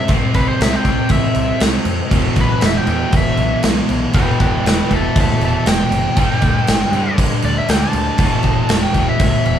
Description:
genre	hard rock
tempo	119 BPM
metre	4/4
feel	straight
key	E minor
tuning	A4 = 438 Hz
part	biting lead guitar	melody	0.0-9.6 s	B4 to A5	-21 LUFS	equal	overdrive
part	crunchy overdriven guitar	riff	0.0-9.6 s	E2 to C4	-24 LUFS	left 6 dB	none
part	crunchy overdriven guitar	riff	0.0-9.6 s	E2 to C4	-23 LUFS	right 6 dB	none
part	growling picked electric bass	bass	0.1-9.6 s	E1 to G2	-23 LUFS	equal	overdrive
part	big rock drum kit	drums	0.1-9.6 s	crash cymbal, kick drum, snare drum	-16 LUFS	equal	none
part	heavy high-gain guitar	riff	2.1-9.6 s	E2 to G3	-28 LUFS	equal	none
room	moderate large studio reverb, RT60 1.3 s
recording	band playing live in one room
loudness	-13 LUFS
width	side -9 dB against mid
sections	0.0-9.6 A section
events	lead electric guitar solo 0.0-9.6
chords	0.0 C; 2.1 Em; 6.2 G5; 8.2 E5

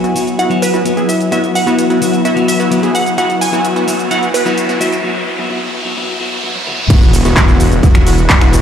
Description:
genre	EDM, festival progressive house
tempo	129 BPM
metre	4/4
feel	straight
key	E major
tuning	A4 = 435 Hz
part	glassy wavetable pluck	melody	0.0-5.0 s	B4 to G#5	-18 LUFS	right 2 dB	chorus, dub echo
part	clean electric guitar	accompaniment	0.0-6.8 s	F#3 to F#4	-20 LUFS	left 3 dB	sidechain pumping, dub echo
part	lush unison pad	sustained chords	0.0-8.6 s	E3 to B4	-21 LUFS	equal	chorus, sidechain pumping
part	supersaw stab	riff	0.0-8.6 s	B3 to G#4	-17 LUFS	equal	sidechain pumping, low-pass filter, dub echo
part	house drum kit	drums	0.0-8.6 s	crash cymbal, finger snaps, handclaps, hi-hat, shaker, toms	-19 LUFS	equal	overdrive
part	riser and impact	sound effects	1.2-8.6 s	none	-22 LUFS	equal	none
part	detuned saw bass	bass	6.9-8.6 s	E1	-13 LUFS	equal	sidechain pumping
part	electronic kick drum	drums	6.9-8.4 s	none	-10 LUFS	equal	overdrive
room	light reverb, digital ambience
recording	played on a big sound system in a bare room, large studio reverb, high-pass filter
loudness	-11 LUFS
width	side -8 dB against mid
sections	0.0-6.9 A section; 6.9-8.6 B section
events	build-up 0.0-6.9; filter sweep on supersaw synth 0.0-6.9; filter sweep 0.0-6.9; riser 1.2-6.9; break 5.0-6.9; drum fill 6.6-6.9; drop 6.9-8.6; impact 6.9-8.6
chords	0.0 Esus2

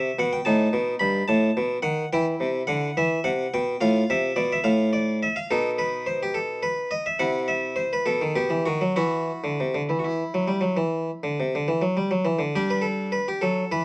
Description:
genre	classical, baroque-style suite movement for harpsichord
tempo	69 BPM (dotted quarters)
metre	12/8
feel	uneven beats, rubato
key	unclear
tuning	A4 = 439 Hz
part	harpsichord	solo	0.0-13.8 s	G2 to B5	-22 LUFS	equal	none
room	light reverb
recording	worn, warbling old tape, cassette tape, warbly pitch drift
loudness	-22 LUFS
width	side -24 dB against mid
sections	0.0-12.5 A section; 12.5-13.8 A section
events	none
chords	0.5 B7; 2.1 Em; 3.8 F/A; 5.5 B; 7.2 C; 8.1 B; 9.0 N.C.; 12.5 G5

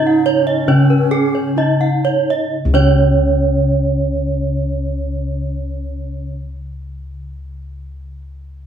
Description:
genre	gamelan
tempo	59-76 BPM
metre	4/4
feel	straight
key	unclear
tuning	A4 = 440 Hz
part	gamelan-type bronze metallophone	melody	0.0-6.3 s	Db4 to Eb4+30c	-22 LUFS	left 2 dB	none
part	breathy bass bansuri	second line	0.0-2.3 s	Db4 to Eb4+22c	-20 LUFS	right 7 dB	none
part	gamelan-type bronze metallophone	accompaniment	0.0-6.3 s	Db3	-23 LUFS	left 1 dB	none
part	gamelan-type bronze metallophone	arpeggios	0.0-6.3 s	Cb5-45c to Gb5-35c	-24 LUFS	left 5 dB	none
part	gamelan-type bossed gongs	bass	0.0-6.2 s	Db2 to Eb4+30c	-19 LUFS	left 1 dB	none
part	gamelan-type bronze metallophone	arpeggios	0.3-6.3 s	Ab4+25c to Eb5+30c	-19 LUFS	right 8 dB	none
room	wet large studio reverb, RT60 1.0 s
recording	band playing live in one room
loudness	-14 LUFS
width	side -8 dB against mid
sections	0.0-2.5 A section; 2.5-6.6 B section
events	slowing down 0.0-2.5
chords	none

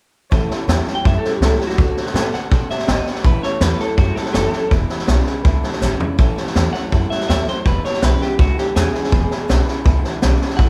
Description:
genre	rockabilly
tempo	164 BPM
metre	4/4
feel	straight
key	A major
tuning	A4 = 440 Hz
part	honky-tonk upright piano	accompaniment	0.3-10.7 s	B4 to B5	-37 LUFS	equal	none
part	picked steel-string acoustic guitar	accompaniment	0.3-10.7 s	E2 to F#4	-31 LUFS	equal	none
part	electric guitar through a small old amp	riff	0.3-10.7 s	E2 to C4	-29 LUFS	equal	spring reverb
part	upright bass	bass	0.3-10.7 s	E1 to B2	-22 LUFS	equal	none
part	vintage drum kit	drums	0.3-10.7 s	hi-hat, kick drum, snare drum, toms	-20 LUFS	equal	none
part	electric guitar through a small old amp	melody	0.9-10.7 s	F#4 to G5	-26 LUFS	equal	none
room	light reverb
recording	band playing live in one room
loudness	-18 LUFS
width	mono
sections	0.3-10.7 A section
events	drum fill 5.8-6.2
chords	0.3 A; 1.8 D; 3.3 A; 4.7 E7; 6.2 A; 7.7 E7

